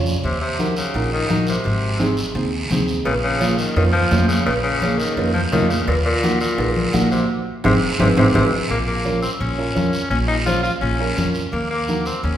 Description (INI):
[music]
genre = latin, cumbia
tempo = 170 BPM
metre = 4/4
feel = straight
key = Bb minor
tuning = A4 = 440 Hz
[part]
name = dark upright piano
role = accompaniment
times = 0.0-12.1 s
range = Bb3 to Db5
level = -23 LUFS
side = right 3 dB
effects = none
[part]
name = upright bass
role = bass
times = 0.0-12.4 s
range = Ab1 to F2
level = -23 LUFS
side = equal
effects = none
[part]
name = guiro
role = percussion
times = 0.1-12.4 s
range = none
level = -29 LUFS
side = right 1 dB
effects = none
[part]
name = raspy tenor saxophone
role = second line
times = 0.2-12.4 s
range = Bb2 to F4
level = -22 LUFS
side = left 2 dB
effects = none
[part]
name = congas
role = percussion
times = 0.6-12.1 s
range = none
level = -25 LUFS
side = left 2 dB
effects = none
[part]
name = cowbell and timbales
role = percussion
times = 3.1-8.4 s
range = none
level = -28 LUFS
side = right 2 dB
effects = none
[sound]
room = wet recital hall reverb, RT60 1.5 s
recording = recorded in a church or concert hall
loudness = -17 LUFS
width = side -10 dB against mid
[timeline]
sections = 0.0-8.7 A section; 8.7-12.4 B section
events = tenor saxophone solo 0.0-8.7, 8.7-12.4; band accent 7.3-8.7; drum fill 7.6-8.7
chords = 0.2 Ebm; 1.6 Ab; 3.1 Bbm; 5.9 Ebm; 7.3 Ab; 8.7 Bbm; 11.5 Ebm